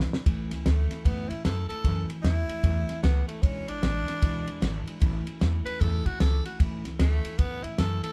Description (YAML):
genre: rockabilly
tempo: 151 BPM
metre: 4/4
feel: swing 63% on 8ths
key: A major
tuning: A4 = 440 Hz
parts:
  - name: picked steel-string acoustic guitar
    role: accompaniment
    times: 0.0-8.1 s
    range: E2 to E4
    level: -38 LUFS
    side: equal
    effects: none
  - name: upright bass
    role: bass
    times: 0.0-8.1 s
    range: E1 to A2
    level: -30 LUFS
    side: equal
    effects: none
  - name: cloth-damped thuddy drum kit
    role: drums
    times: 0.0-8.1 s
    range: kick drum, ride cymbal, snare drum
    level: -30 LUFS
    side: equal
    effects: none
  - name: raspy tenor saxophone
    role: melody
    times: 0.7-8.1 s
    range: A3 to B4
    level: -37 LUFS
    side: equal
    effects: none
room: light reverb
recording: band playing live in one room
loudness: -27 LUFS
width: mono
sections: 0.3-8.1 A section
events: drum fill 0.0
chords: 0.3 A; 3.4 E7; 5.0 A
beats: | 0.26 0.66 1.05 1.45 | 1.84 2.24 2.64 3.03 | 3.43 3.82 4.22 4.62 | 5.01 5.41 5.81 6.20 | 6.60 6.99 7.39 7.79